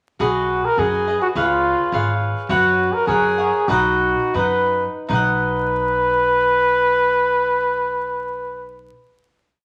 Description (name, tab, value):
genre	mexican folk, mariachi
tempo	74-106 BPM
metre	2/4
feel	rubato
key	B major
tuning	A4 = 440 Hz
part	warm trumpet	melody	0.2-8.9 s	E#4 to B4	-20 LUFS	equal	none
part	cavaquinho	accompaniment	0.2-9.0 s	D#4 to F#5	-23 LUFS	equal	none
part	upright bass	bass	0.2-8.9 s	G#1 to F#2	-29 LUFS	equal	none
room	wet large studio reverb, RT60 1.1 s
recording	vinyl crackle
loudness	-19 LUFS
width	mono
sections	0.2-5.1 A section; 5.1-8.3 final chord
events	slowing down 2.5-5.1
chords	0.2 B6; 1.4 C#7; 2.5 F#sus4; 3.1 F#; 3.7 B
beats	| 0.20 0.78 | 1.36 1.93 | 2.50 3.08 | 3.68 4.35 | 5.10 5.91 | 6.70 7.49